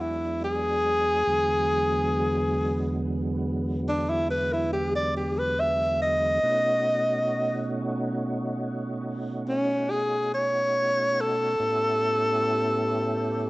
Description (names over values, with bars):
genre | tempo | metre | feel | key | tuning
blues | 46 BPM (dotted quarters) | 12/8 | straight | unclear | A4 = 442 Hz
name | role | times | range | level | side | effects
mellow tenor saxophone | melody | 0.0-13.5 s | C#4 to E5 | -24 LUFS | equal | none
tonewheel organ | sustained chords | 0.0-13.5 s | E2 to G4 | -29 LUFS | right 1 dB | slow rotary speaker, overdrive, chorus vibrato
room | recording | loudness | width
moderate spring reverb, RT60 1.8 s, small room ambience | nothing above 8.0 kHz | -23 LUFS | side -20 dB against mid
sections
0.0-13.5 A section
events
none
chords
0.0 E7; 6.4 B7; 11.6 A7